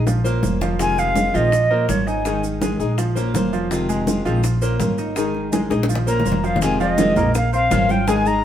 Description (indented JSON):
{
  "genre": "latin, Cuban son and guajira",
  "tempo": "165 BPM",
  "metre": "4/4",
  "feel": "straight",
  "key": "unclear",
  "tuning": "A4 = 441 Hz",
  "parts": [
    { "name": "flamenco guitar", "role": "accompaniment", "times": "0.0-8.4 s", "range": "C3 to C5", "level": "-24 LUFS", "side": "left 3 dB", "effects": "none" },
    { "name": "upright bass", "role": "bass", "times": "0.0-8.4 s", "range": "F1 to Bb1", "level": "-23 LUFS", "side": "equal", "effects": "none" },
    { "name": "clear grand piano", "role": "arpeggios", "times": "0.1-8.4 s", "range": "Eb3 to F6", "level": "-24 LUFS", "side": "right 1 dB", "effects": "none" },
    { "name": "bongos", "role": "percussion", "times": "0.1-8.3 s", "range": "none", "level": "-27 LUFS", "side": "left 2 dB", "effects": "none" },
    { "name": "congas", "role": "percussion", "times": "0.1-8.4 s", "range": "none", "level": "-26 LUFS", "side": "right 3 dB", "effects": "none" },
    { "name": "maracas", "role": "percussion", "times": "0.1-8.4 s", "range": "none", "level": "-36 LUFS", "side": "right 6 dB", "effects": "none" },
    { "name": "reedy concert flute", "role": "melody", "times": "0.8-2.4, 6.1-8.4 s", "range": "Db5 to Bb5", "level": "-20 LUFS", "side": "equal", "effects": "none" }
  ],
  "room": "wet studio reverb, RT60 0.9 s",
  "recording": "band playing live in one room",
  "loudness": "-17 LUFS",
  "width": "side -10 dB against mid",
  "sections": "0.0-6.6 A section; 6.6-8.4 B section",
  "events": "drum fill 0.1-0.8, 5.7-6.6",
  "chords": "0.1 Bbmadd9; 0.8 Fm7; 1.5 Bbmadd9; 2.3 Absus2; 3.0 Bbmadd9; 3.7 Fm7; 4.4 Bbmadd9; 5.2 Absus2; 5.9 Bbmadd9; 6.6 Fm7; 7.3 Bbmadd9",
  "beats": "0.07 0.43 | 0.80 1.16 1.52 1.89 | 2.25 2.62 2.98 3.35 | 3.71 4.07 4.44 4.80 | 5.17 5.53 5.89 6.26 | 6.62 6.99 7.35 7.71 | 8.08 8.44"
}